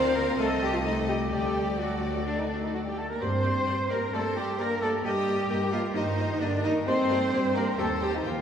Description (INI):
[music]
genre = quick classical-period movement for symphony orchestra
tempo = 130 BPM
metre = 4/4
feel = rubato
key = unclear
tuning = A4 = 442 Hz
[part]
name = rich chamber violin section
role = melody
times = 0.0-8.3 s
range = D5 to G5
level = -39 LUFS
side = left 3 dB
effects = none
[part]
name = rich chamber violin section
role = second line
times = 0.0-8.4 s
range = G4 to F5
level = -38 LUFS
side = left 2 dB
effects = none
[part]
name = warm clarinet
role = second line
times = 0.0-8.4 s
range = D4 to C5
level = -35 LUFS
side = left 1 dB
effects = none
[part]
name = rich chamber viola section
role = accompaniment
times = 0.0-8.3 s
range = F3 to Bb4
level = -34 LUFS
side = left 1 dB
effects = none
[part]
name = warm French horn section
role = sustained chords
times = 0.0-8.4 s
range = D3 to C4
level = -32 LUFS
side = left 1 dB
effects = none
[part]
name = rich chamber double bass section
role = bass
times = 0.0-8.4 s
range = C2 to G2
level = -33 LUFS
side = right 2 dB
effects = none
[part]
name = warm chamber cello section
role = bass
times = 0.0-8.3 s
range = D4 to C5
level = -30 LUFS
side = right 1 dB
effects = none
[part]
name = mellow concert flute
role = second line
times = 0.2-8.4 s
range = D5 to C6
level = -35 LUFS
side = left 2 dB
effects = none
[sound]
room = wet church reverb, RT60 2.9 s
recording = none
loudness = -25 LUFS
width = side -8 dB against mid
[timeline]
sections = 0.0-8.4 A section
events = none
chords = 0.4 Am7b5/C; 1.3 D; 3.2 Gm; 5.0 Eb/G; 6.9 Gm; 7.8 Eb